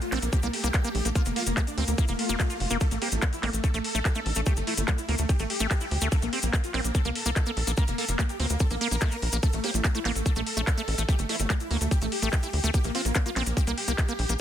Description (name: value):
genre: psychedelic trance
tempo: 145 BPM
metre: 4/4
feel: straight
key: A phrygian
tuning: A4 = 444 Hz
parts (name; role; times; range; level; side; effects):
- dense compressed supersaw; melody; 0.0-14.3 s; A3 to Bb4; -33 LUFS; equal; phaser, sidechain pumping, digital delay
- swarming drone; sustained chords; 0.0-2.8 s; A3 to A4; -40 LUFS; right 2 dB; none
- techno drum kit; drums; 0.0-14.4 s; handclaps, hi-hat; -33 LUFS; left 2 dB; none
- cabasa; percussion; 0.0-14.4 s; none; -36 LUFS; left 2 dB; none
- liquid acid bass; riff; 0.1-14.3 s; G3 to F4; -32 LUFS; moving between left 3 dB and right 4 dB; chorus, auto-pan, sidechain pumping, ping-pong delay
- tight sequencer bass; bass; 0.1-14.4 s; F1 to D2; -29 LUFS; equal; none
- electronic kick drum; drums; 0.3-14.1 s; none; -25 LUFS; equal; none
- swell; sound effects; 2.1-2.8 s; none; -36 LUFS; left 11 dB; none
- vowel-sweep wobble bass; second line; 3.0-5.1, 9.6-11.5 s; G3 to E4; -44 LUFS; right 4 dB; none
room: digital ambience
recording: dense, heavily limited modern master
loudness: -24 LUFS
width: side -10 dB against mid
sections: 0.0-14.4 A section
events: swell 2.1-2.8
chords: 0.0 Bb5; 2.8 A5; 6.1 Bb5; 9.4 A5; 12.7 Bb5